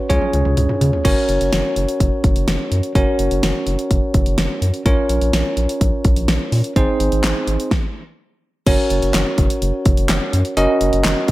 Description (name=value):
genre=synth-pop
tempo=126 BPM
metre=4/4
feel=straight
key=unclear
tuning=A4 = 441 Hz
part: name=bell-like tine electric piano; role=accompaniment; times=0.0-11.3 s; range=C4 to Eb5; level=-19 LUFS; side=right 1 dB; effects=fast stereo tremolo
part: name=round analog bass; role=bass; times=0.1-11.3 s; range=Gb1 to Db3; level=-19 LUFS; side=equal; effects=none
part: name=pop drum kit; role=drums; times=0.1-11.3 s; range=crash cymbal, handclaps, hi-hat, kick drum, snare drum, toms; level=-18 LUFS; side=equal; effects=gated reverb
room=light reverb, digital ambience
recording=none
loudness=-15 LUFS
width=side -17 dB against mid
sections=0.0-1.0 A section; 1.0-8.7 B section; 8.7-11.3 C section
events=drum fill 0.1-1.0; stop 7.7-8.7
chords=0.1 Db; 1.0 Gb; 4.9 Bbm; 6.8 Ab; 8.7 Gb